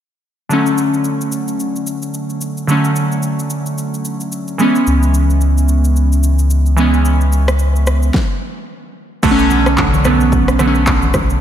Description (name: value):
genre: amapiano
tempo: 110 BPM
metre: 4/4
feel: swing 58% on 16ths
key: unclear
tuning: A4 = 440 Hz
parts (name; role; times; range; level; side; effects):
- glassy digital keys; accompaniment; 0.5-11.4 s; D3 to C#4; -15 LUFS; right 1 dB; chorus
- deep house drum kit; drums; 0.5-11.4 s; crash cymbal, handclaps, kick drum, rim click, shaker, snare drum; -20 LUFS; equal; overdrive
- warm sub bass; bass; 4.9-11.4 s; B1 to C#2; -13 LUFS; left 1 dB; none
- congas; percussion; 9.5-11.3 s; none; -23 LUFS; left 2 dB; none
room: moderate lush hall reverb, RT60 2.5 s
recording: dreamy mix soaked in reverb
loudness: -12 LUFS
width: side -10 dB against mid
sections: 0.5-9.2 A section; 9.2-11.4 B section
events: stop 8.1-9.2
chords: 0.5 Dmaj7; 4.6 C#m7; 9.2 Bm7